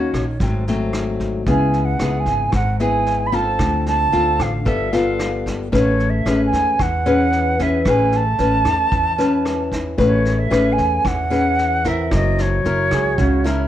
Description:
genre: bossa nova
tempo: 113 BPM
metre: 4/4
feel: straight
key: A major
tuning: A4 = 440 Hz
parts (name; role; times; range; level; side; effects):
- concert flute; melody; 0.0-13.7 s; C#5 to B5; -20 LUFS; right 2 dB; none
- nylon-string guitar; accompaniment; 0.0-13.7 s; G#2 to B4; -20 LUFS; left 3 dB; none
- upright bass; bass; 0.0-13.7 s; F#1 to E2; -22 LUFS; right 1 dB; none
- vintage brush drum kit; drums; 0.1-13.5 s; kick drum, rim click, snare drum; -27 LUFS; right 1 dB; none
- mellow trombone; second line; 12.9-13.7 s; E4 to G#4; -24 LUFS; right 8 dB; none
room: moderate large studio reverb, RT60 1.0 s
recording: dark, warm production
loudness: -16 LUFS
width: side -11 dB against mid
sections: 0.0-10.0 A section; 10.0-13.7 A section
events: none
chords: 0.4 G#7b9; 1.5 C#m7; 3.6 Dm7; 4.7 G9; 5.7 Amaj9; 12.1 F#7#11

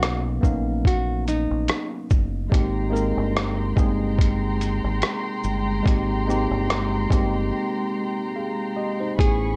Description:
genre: lo-fi hip hop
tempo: 72 BPM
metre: 4/4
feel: swing 55% on 16ths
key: Ab major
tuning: A4 = 435 Hz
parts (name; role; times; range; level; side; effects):
- nylon-string guitar; melody; 0.0-1.9, 9.2-9.6 s; D#4 to G#4; -30 LUFS; equal; low-pass filter, analog delay
- tine electric piano; accompaniment; 0.0-9.6 s; F#3 to G#5; -28 LUFS; equal; overdrive, cassette tape, low-pass filter
- deep dub fingered electric bass; bass; 0.0-9.6 s; F#1 to B1; -29 LUFS; equal; none
- lo-fi sampler-style drum kit; drums; 0.0-9.4 s; hi-hat, kick drum, rim click, shaker; -24 LUFS; equal; vintage 12-bit sampler grit
- warm studio string section; sustained chords; 2.5-9.6 s; Ab3 to C#6; -33 LUFS; equal; low-pass filter
room: light reverb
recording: none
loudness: -23 LUFS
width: mono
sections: 0.0-9.2 A section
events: break 7.5-9.2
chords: 0.0 Bmaj9; 2.5 Abmaj9

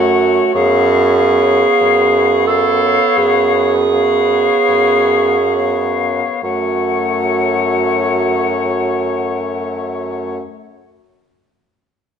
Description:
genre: classical, slow romantic movement for wind quintet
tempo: 33-51 BPM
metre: 4/4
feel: rubato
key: F# minor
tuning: A4 = 438 Hz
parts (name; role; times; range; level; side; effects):
- mellow hollow concert flute; melody; 0.0-10.4 s; E#5 to F#5; -18 LUFS; left 9 dB; none
- warm oboe; second line; 0.0-10.4 s; C#5; -22 LUFS; left 8 dB; none
- clear French horn; accompaniment; 0.0-10.4 s; A3 to B3; -24 LUFS; left 2 dB; none
- dark clarinet; accompaniment; 0.0-10.4 s; F#4 to A4; -16 LUFS; right 6 dB; none
- warm bassoon; bass; 0.0-10.4 s; F#2; -19 LUFS; right 1 dB; none
room: moderate recital hall reverb, RT60 1.5 s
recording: nothing above 10.9 kHz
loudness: -12 LUFS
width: side -7 dB against mid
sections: 0.0-6.4 A section; 6.4-12.2 B section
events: slowing down 0.0-6.4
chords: 0.0 F#m; 0.6 C#7/F#; 6.4 F#m

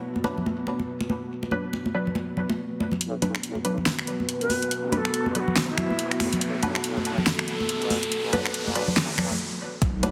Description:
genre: deep dubstep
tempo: 141 BPM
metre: 4/4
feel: swing 59% on 16ths, half-time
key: B minor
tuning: A4 = 440 Hz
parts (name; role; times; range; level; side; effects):
- dark analog pad; sustained chords; 0.0-10.1 s; B3 to B4; -34 LUFS; equal; chorus
- filtered dub chord stab; stabs; 0.2-10.1 s; F#3 to B4; -34 LUFS; equal; phaser, lush chorus, dub echo
- congas; percussion; 0.2-10.1 s; none; -32 LUFS; equal; dub echo
- deep soft wobble bass; bass; 3.0-10.1 s; A1 to D2; -36 LUFS; equal; chorus, high-pass filter
- deep house drum kit; drums; 3.0-10.1 s; finger snaps, hi-hat, snare drum; -30 LUFS; equal; overdrive, small room ambience
- riser and impact; sound effects; 4.2-10.1 s; none; -36 LUFS; equal; none
- breathy bright ney; melody; 4.4-6.3 s; E4 to B4; -34 LUFS; equal; low-pass filter, dub echo
- electronic kick drum; drums; 9.8-9.9 s; none; -28 LUFS; equal; overdrive, small room ambience
room: moderate echo chamber reverb, RT60 2.1 s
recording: heavily compressed radio sound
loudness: -26 LUFS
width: mono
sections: 0.0-3.0 A section; 3.0-9.8 B section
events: build-up 3.0-9.8; filter sweep on ney 3.0-9.8; riser 4.2-9.4; stop 9.4-9.8; impact 9.8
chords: 0.0 Bm

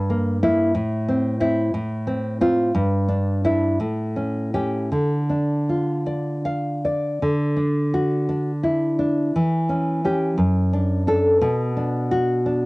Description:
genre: romantic piece for solo classical guitar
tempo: 51-63 BPM (dotted quarters)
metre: 6/8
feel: rubato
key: D minor, D major from 7.2 s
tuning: A4 = 440 Hz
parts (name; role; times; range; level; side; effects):
- nylon-string guitar; solo; 0.0-12.7 s; F#2 to F5; -19 LUFS; equal; none
room: moderate booth ambience, RT60 0.3 s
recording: home recording on cassette, nothing above 10.7 kHz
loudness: -19 LUFS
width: side -23 dB against mid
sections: 0.0-7.2 A section; 7.2-12.7 B section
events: none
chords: 0.0 Edim/G; 0.8 Am; 1.7 F/A; 2.7 Em7/G; 3.8 A7; 4.9 Dm; 7.2 D; 9.3 C#dim/E; 10.4 D/F#; 11.4 Bm

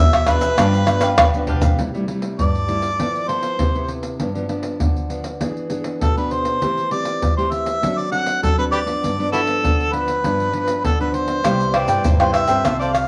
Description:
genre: samba and choro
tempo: 99 BPM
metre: 4/4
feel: straight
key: C major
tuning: A4 = 440 Hz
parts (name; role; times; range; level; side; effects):
- warm harmonica; melody; 0.0-13.1 s; E4 to F#5; -23 LUFS; equal; none
- cavaquinho; accompaniment; 0.0-1.8, 11.4-13.0 s; D4 to G5; -25 LUFS; equal; none
- nylon-string guitar; accompaniment; 0.0-13.1 s; G2 to A4; -26 LUFS; equal; none
- upright bass; bass; 0.0-1.8, 11.4-13.1 s; G1 to C3; -28 LUFS; equal; none
- tube shaker, pandeiro, tamborim and surdo; percussion; 0.1-13.1 s; none; -22 LUFS; equal; none
room: wet studio reverb, RT60 0.8 s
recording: none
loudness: -19 LUFS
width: mono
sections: 0.0-1.8 A section; 1.8-11.4 B section; 11.4-13.1 C section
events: drum fill 1.0-1.8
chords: 0.0 E7; 0.6 G7; 1.8 C6; 3.0 Fmaj7#11; 4.2 G7; 5.4 E7; 6.6 Am7/E; 7.8 D7/F#; 9.0 G7; 11.4 Cmaj7

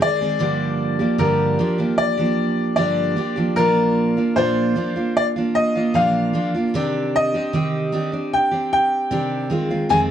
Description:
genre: pop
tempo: 76 BPM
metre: 4/4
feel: straight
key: C minor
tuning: A4 = 440 Hz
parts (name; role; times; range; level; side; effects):
- bright upright piano; melody; 0.0-10.0 s; Bb4 to Ab5; -20 LUFS; left 2 dB; none
- picked steel-string acoustic guitar; accompaniment; 0.0-10.1 s; F2 to Ab4; -20 LUFS; right 2 dB; none
room: light reverb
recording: dark, warm production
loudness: -17 LUFS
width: side -10 dB against mid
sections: 0.0-10.1 A section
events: none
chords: 0.4 Gm7; 3.6 Bb; 6.7 Cmadd9; 9.5 Fm7

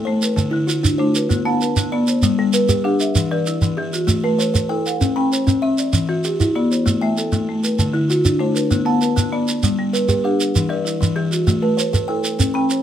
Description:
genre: southern african traditional, mbira-style interlocking cycle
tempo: 130 BPM (dotted quarters)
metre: 12/8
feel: straight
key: A equiheptatonic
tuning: A4 = 440 Hz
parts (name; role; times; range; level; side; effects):
- buzzing kalimba; arpeggios; 0.0-12.8 s; D3 to B5-29c; -20 LUFS; left 1 dB; none
- marimba with medium mallets; arpeggios; 0.0-12.8 s; D3 to G5+29c; -20 LUFS; equal; none
- shekere; percussion; 0.2-12.8 s; none; -19 LUFS; right 2 dB; none
room: light reverb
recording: none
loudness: -16 LUFS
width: side -10 dB against mid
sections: 0.0-12.8 A section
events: none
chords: 0.4 D; 1.3 Bm; 2.2 G; 3.2 Em; 4.1 Am; 5.0 C; 5.9 Em; 6.9 Am; 7.8 D; 8.7 Bm; 9.6 G; 10.6 Em; 11.5 Am

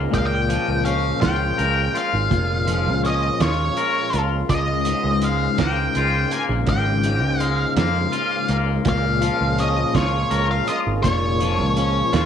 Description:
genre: psychedelic rock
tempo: 55 BPM (dotted quarters)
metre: 6/8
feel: straight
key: unclear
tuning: A4 = 439 Hz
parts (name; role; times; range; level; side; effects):
- tonewheel organ; sustained chords; 0.0-12.3 s; Ab3 to Ab4; -29 LUFS; right 13 dB; slow rotary speaker
- twangy electric guitar; riff; 0.0-12.3 s; Db2 to Bb4; -23 LUFS; left 8 dB; harmonic tremolo
- overdriven picked electric bass; bass; 0.0-12.3 s; F1 to F2; -23 LUFS; right 1 dB; none
- octave-fuzz lead guitar; melody; 0.1-12.3 s; Db5 to Ab5; -24 LUFS; equal; distortion, slapback echo
- cloth-damped thuddy drum kit; drums; 0.1-12.3 s; hi-hat, kick drum, snare drum; -25 LUFS; right 5 dB; none
room: small room ambience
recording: 1960s-style stereo with parts hard left and right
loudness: -18 LUFS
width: side -8 dB against mid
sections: 0.0-12.3 A section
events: none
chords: 0.1 Bbm7; 4.5 Db6; 8.9 Bbm7

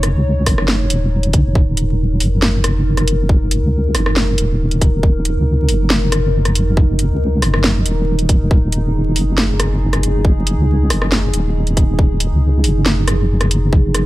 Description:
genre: deep dubstep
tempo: 138 BPM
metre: 4/4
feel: half-time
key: Eb minor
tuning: A4 = 440 Hz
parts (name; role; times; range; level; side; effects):
- dark analog pad; sustained chords; 0.0-14.1 s; Eb4 to Db5; -23 LUFS; equal; chorus, phaser
- deep soft wobble bass; bass; 0.0-14.0 s; Eb1 to Eb2; -15 LUFS; equal; chorus, tube saturation
- garage drum kit; drums; 0.0-14.0 s; hi-hat, rim click, snare drum; -19 LUFS; equal; none
- electronic kick drum; drums; 0.5-13.8 s; none; -13 LUFS; equal; none
room: little or no reverb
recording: vinyl crackle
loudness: -13 LUFS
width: side -17 dB against mid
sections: 0.0-14.1 A section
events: none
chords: 0.0 Ebm

